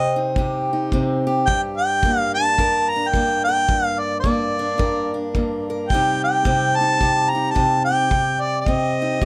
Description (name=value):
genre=acoustic country blues, solo or duo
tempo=108 BPM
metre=4/4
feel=swing 62% on 8ths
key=G minor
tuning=A4 = 441 Hz
part: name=mellow harmonica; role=melody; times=0.0-9.2 s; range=D5 to Bb5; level=-22 LUFS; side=equal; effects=none
part: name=fingerpicked steel-string acoustic guitar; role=accompaniment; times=0.0-9.2 s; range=G2 to Bb4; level=-24 LUFS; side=equal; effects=none
part: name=kick drum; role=drums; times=0.4-9.2 s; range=none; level=-26 LUFS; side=equal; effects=none
room=light reverb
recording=none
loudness=-20 LUFS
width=mono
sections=0.0-9.2 A section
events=none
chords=0.0 Cm; 1.5 Gm; 5.9 Cm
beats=0.35 0.91 | 1.46 2.02 2.57 3.13 | 3.68 4.24 4.79 5.34 | 5.90 6.45 7.00 7.56 | 8.11 8.66 9.21